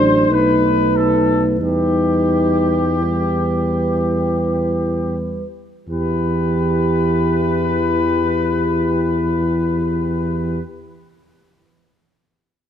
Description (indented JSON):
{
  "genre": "classical, hymn-like piece for brass band",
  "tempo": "43 BPM",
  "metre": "3/4",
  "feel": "rubato",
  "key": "E minor",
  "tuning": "A4 = 444 Hz",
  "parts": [
    { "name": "warm trumpet section", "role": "melody", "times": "0.0-10.6 s", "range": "G4 to C5", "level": "-23 LUFS", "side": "left 6 dB", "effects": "none" },
    { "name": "mellow French horn section", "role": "second line", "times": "0.0-10.6 s", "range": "G4 to C5", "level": "-22 LUFS", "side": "right 5 dB", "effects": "none" },
    { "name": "dark euphonium", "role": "accompaniment", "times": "0.0-10.6 s", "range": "D4 to E4", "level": "-20 LUFS", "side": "left 3 dB", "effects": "none" },
    { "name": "dark euphonium", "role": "accompaniment", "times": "0.0-10.6 s", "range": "E3 to A3", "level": "-25 LUFS", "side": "right 4 dB", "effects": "none" },
    { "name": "mellow tuba", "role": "bass", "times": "0.0-10.6 s", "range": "A1 to E2", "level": "-21 LUFS", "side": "equal", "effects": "none" }
  ],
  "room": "moderate scoring stage reverb, RT60 1.9 s",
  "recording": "close, detailed microphones",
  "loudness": "-15 LUFS",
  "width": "side -9 dB against mid",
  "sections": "0.0-5.9 A section; 5.9-10.1 B section",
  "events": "slowing down 0.0-5.9",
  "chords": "0.3 B7; 1.6 Em"
}